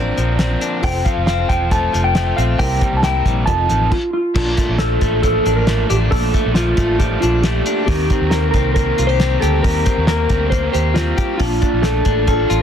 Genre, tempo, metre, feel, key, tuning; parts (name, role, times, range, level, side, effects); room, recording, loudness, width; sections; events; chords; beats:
jangly indie pop; 136 BPM; 4/4; straight; Bb major from 4.4 s; A4 = 438 Hz
vibraphone with medium hard mallets; second line; 0.0-3.9, 11.4-12.6 s; D4 to D5; -30 LUFS; right 3 dB
raw garage guitar; accompaniment; 0.0-12.6 s; Bb2 to Bb4; -26 LUFS; right 8 dB; overdrive, spring reverb
reed electric piano; accompaniment; 0.0-12.6 s; Bb3 to A5; -31 LUFS; left 5 dB; fast tremolo
direct-recorded clean electric guitar; arpeggios; 0.0-12.6 s; F2 to G4; -23 LUFS; left 7 dB
vintage muted fingered electric bass; bass; 0.0-12.6 s; E1 to Eb2; -19 LUFS; equal
cloth-damped thuddy drum kit; drums; 0.2-12.6 s; crash cymbal, hi-hat, kick drum, snare drum; -19 LUFS; equal
mellow electric guitar; melody; 0.8-12.6 s; F4 to A5; -19 LUFS; equal; wide subtle chorus
little or no reverb; dense, heavily limited modern master; -14 LUFS; side -8 dB against mid
0.0-4.4 A section; 4.4-12.6 B section
stop 3.9-4.4
0.0 Bbadd9; 0.8 F; 2.6 C7; 3.5 F7; 4.4 Bbmaj7; 7.9 Eb6; 11.4 Bbmaj7
0.39 | 0.83 1.27 1.72 2.16 | 2.60 3.04 3.48 3.92 | 4.36 4.80 5.24 5.68 | 6.12 6.56 7.00 7.44 | 7.88 8.32 8.76 9.20 | 9.64 10.09 10.53 10.97 | 11.41 11.85 12.29